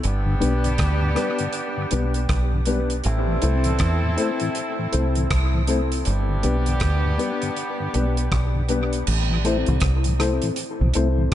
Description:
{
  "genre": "dub reggae",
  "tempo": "80 BPM",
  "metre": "4/4",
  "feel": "swing 60% on 16ths",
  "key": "A minor",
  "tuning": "A4 = 440 Hz",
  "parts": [
    { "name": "warm horn section", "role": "second line", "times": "0.0-8.6 s", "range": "B3 to A4", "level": "-29 LUFS", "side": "right 1 dB", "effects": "high-pass filter, dub echo" },
    { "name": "deep dub fingered electric bass", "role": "bass", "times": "0.0-11.3 s", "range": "G1 to E2", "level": "-21 LUFS", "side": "equal", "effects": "none" },
    { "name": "damped 70s drum kit", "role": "drums", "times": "0.0-11.3 s", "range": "crash cymbal, hi-hat, kick drum, rim click", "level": "-27 LUFS", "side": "right 1 dB", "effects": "dub echo" },
    { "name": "mellow tonewheel organ", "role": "accompaniment", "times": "0.3-11.3 s", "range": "G2 to E4", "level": "-29 LUFS", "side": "left 2 dB", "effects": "chorus vibrato, slow rotary speaker, high-pass filter, dub echo" },
    { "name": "dark concert grand piano", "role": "stabs", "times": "0.4-11.2 s", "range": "B3 to C5", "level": "-27 LUFS", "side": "left 4 dB", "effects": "high-pass filter, dub echo" }
  ],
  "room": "small room ambience",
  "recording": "echo-heavy mix, nothing above 10.6 kHz",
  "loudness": "-19 LUFS",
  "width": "side -12 dB against mid",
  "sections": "0.0-9.1 A section; 9.1-11.3 B section",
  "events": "none",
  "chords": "0.0 G; 3.0 Am; 6.1 G; 9.1 Am",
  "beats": "| 0.04 0.80 1.55 2.30 | 3.05 3.80 4.55 5.30 | 6.06 6.81 7.56 8.31 | 9.06 9.81 10.57 11.32"
}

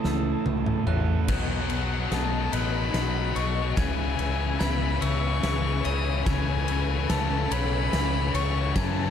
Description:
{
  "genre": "post-rock",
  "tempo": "48 BPM (dotted quarters)",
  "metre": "6/8",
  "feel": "straight",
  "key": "unclear",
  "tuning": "A4 = 441 Hz",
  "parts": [
    { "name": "dark studio string section", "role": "sustained chords", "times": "0.0-9.1 s", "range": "B3 to A5", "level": "-37 LUFS", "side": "left 1 dB", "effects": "none" },
    { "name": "glockenspiel with brass mallets", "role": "arpeggios", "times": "0.0-9.1 s", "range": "C#6 to A6", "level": "-41 LUFS", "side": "right 4 dB", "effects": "digital delay" },
    { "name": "twelve-string electric guitar", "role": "arpeggios", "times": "0.0-9.1 s", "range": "B2 to G#4", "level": "-35 LUFS", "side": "left 4 dB", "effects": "ensemble chorus, digital delay" },
    { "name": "distorted electric guitar", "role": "riff", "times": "0.0-1.3 s", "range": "A2 to A3", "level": "-29 LUFS", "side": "right 10 dB", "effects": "distortion" },
    { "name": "growling fingered electric bass", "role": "bass", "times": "0.0-9.1 s", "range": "A1 to F#2", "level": "-28 LUFS", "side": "equal", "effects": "overdrive" },
    { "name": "huge arena drum kit", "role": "drums", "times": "0.0-8.9 s", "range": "crash cymbal, kick drum, ride cymbal, snare drum, toms", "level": "-30 LUFS", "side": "equal", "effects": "none" },
    { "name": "warm violin", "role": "melody", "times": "1.3-9.1 s", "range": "F#5 to D#6", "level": "-32 LUFS", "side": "equal", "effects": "digital delay" },
    { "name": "cranked stack guitar", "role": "riff", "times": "1.3-9.1 s", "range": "B2 to F#3", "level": "-30 LUFS", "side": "left 13 dB", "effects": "overdrive" }
  ],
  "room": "small room ambience",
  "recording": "dark, warm production",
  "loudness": "-23 LUFS",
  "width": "side -8 dB against mid",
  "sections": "0.0-1.3 A section; 1.3-9.1 B section",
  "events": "drum fill 0.0-1.3, 1.3-9.1; build-up 1.3-9.1",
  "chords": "0.0 A/C#; 1.3 B7; 3.8 C#m7; 6.3 Amaj7",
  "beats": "0.04 | 1.29 2.53 | 3.78 5.02 | 6.27 7.51 | 8.76"
}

